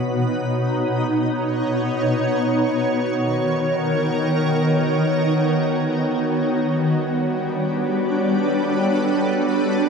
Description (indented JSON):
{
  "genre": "ambient",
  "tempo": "free time",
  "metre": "none",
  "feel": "none",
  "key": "unclear",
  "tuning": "A4 = 440 Hz",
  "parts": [
    { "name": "shimmering ambient pad", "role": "sustained chords", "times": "0.0-9.9 s", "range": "B2 to C#5", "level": "-20 LUFS", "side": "equal", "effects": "chorus, built-in reverb" },
    { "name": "bowed-like drone", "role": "drone", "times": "0.0-9.9 s", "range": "B3 to F#4", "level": "-25 LUFS", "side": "equal", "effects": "built-in reverb" },
    { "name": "glass harmonica", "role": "texture", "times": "0.0-9.9 s", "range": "C#5", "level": "-29 LUFS", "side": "equal", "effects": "none" }
  ],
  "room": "wet lush hall reverb, RT60 2.7 s",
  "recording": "dark, warm production, nothing above 10.4 kHz",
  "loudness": "-18 LUFS",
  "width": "side -5 dB against mid",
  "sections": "0.0-9.9 A section",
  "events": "none",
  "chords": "0.0 Badd9; 2.4 D#5; 6.4 Gadd9"
}